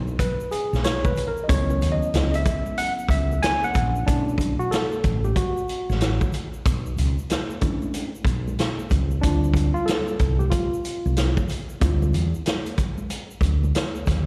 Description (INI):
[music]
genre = hip hop, jazz-hop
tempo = 93 BPM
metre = 4/4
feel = swing 64% on 16ths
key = B minor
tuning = A4 = 437 Hz
[part]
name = tine electric piano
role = accompaniment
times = 0.0-12.3 s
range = F#3 to G#5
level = -28 LUFS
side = equal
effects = slapback echo
[part]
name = woody fretless electric bass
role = bass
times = 0.0-14.3 s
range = A1 to E2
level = -25 LUFS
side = equal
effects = none
[part]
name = tube shaker and congas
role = percussion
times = 0.1-14.3 s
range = none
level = -39 LUFS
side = equal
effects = slapback echo
[part]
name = vintage drum kit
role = drums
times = 0.2-14.3 s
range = hi-hat, kick drum, snare drum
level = -27 LUFS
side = equal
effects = none
[sound]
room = light reverb, small room ambience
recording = live gig heard through the venue's PA, recital hall reverb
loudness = -23 LUFS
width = mono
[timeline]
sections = 0.0-4.1 A section; 4.1-14.3 B section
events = tine electric piano solo 0.0-4.1, 4.1-14.3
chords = 0.0 C#m11; 4.1 Bm11; 9.2 Dm11